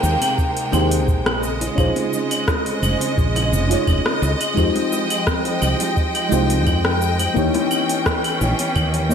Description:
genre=sunset chillout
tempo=86 BPM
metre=4/4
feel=straight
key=F minor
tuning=A4 = 440 Hz
part: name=mellow FM electric piano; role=accompaniment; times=0.0-9.1 s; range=Ab3 to Db5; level=-23 LUFS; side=moving between left 4 dB and right 5 dB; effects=chorus, phaser, auto-pan, ping-pong delay
part: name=clear studio string section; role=sustained chords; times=0.0-9.1 s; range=C3 to G5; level=-23 LUFS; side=equal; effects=none
part: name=woody fretless electric bass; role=bass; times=0.0-9.1 s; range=F1 to F2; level=-20 LUFS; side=equal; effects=none
part: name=deep house drum kit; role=drums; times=0.0-9.1 s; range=cabasa, claves, hi-hat, rim click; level=-24 LUFS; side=equal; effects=overdrive, gated reverb
part: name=congas and bongos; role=percussion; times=0.0-9.1 s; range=none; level=-30 LUFS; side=left 2 dB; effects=none
part: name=electronic kick drum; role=drums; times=0.4-8.9 s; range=none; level=-21 LUFS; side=equal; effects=none
room=moderate plate reverb, RT60 1.9 s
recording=bright 1980s-style digital production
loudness=-17 LUFS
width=side -7 dB against mid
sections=0.0-9.1 A section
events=none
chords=0.0 Abmaj9; 1.4 Bbm11; 4.6 Fm9; 7.4 Eb7b9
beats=0.38 1.08 | 1.78 2.48 3.17 3.87 | 4.57 5.27 5.97 6.66 | 7.36 8.06 8.76

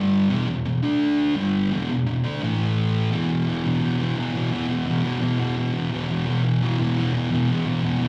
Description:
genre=rock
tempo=171 BPM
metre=4/4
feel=straight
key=E minor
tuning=A4 = 440 Hz
part: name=fuzz guitar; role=solo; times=0.0-8.1 s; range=E2 to D4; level=-23 LUFS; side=equal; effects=distortion
room=light reverb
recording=live gig heard through the venue's PA, club reverb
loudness=-23 LUFS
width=mono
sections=0.0-3.1 A section; 3.1-8.1 B section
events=none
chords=0.3 E5; 0.8 D5; 1.4 G5; 1.7 E5; 2.4 A5; 3.1 E5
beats=| 0.31 0.67 1.02 1.37 | 1.72 2.07 2.42 2.77 | 3.12 3.48 3.83 4.18 | 4.53 4.88 5.23 5.58 | 5.93 6.28 6.63 6.98 | 7.33 7.68 8.03

